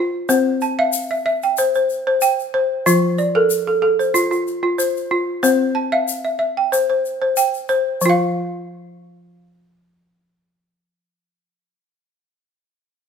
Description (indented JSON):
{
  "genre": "west african traditional, West African string and xylophone music",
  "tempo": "93 BPM",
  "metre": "4/4",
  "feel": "swing 54% on 16ths",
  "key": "unclear",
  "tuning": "A4 = 440 Hz",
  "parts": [
    { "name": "balafon", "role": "arpeggios", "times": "0.0-11.4 s", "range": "F3 to A5", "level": "-16 LUFS", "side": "equal", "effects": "none" },
    { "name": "egg shaker", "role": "percussion", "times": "0.3-8.3 s", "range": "none", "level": "-26 LUFS", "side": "left 8 dB", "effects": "none" }
  ],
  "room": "moderate recital hall reverb, RT60 1.5 s",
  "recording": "minimal, uncompressed stereo recording",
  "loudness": "-16 LUFS",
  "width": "side -6 dB against mid",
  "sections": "0.0-8.0 A section; 8.0-10.6 B section",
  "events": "none",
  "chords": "0.3 C; 2.9 F; 5.4 C; 8.0 N.C.",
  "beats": "| 0.29 0.93 1.58 2.22 | 2.86 3.51 4.15 4.79 | 5.44 6.08 6.72 7.37 | 8.02 8.66 9.31 9.95"
}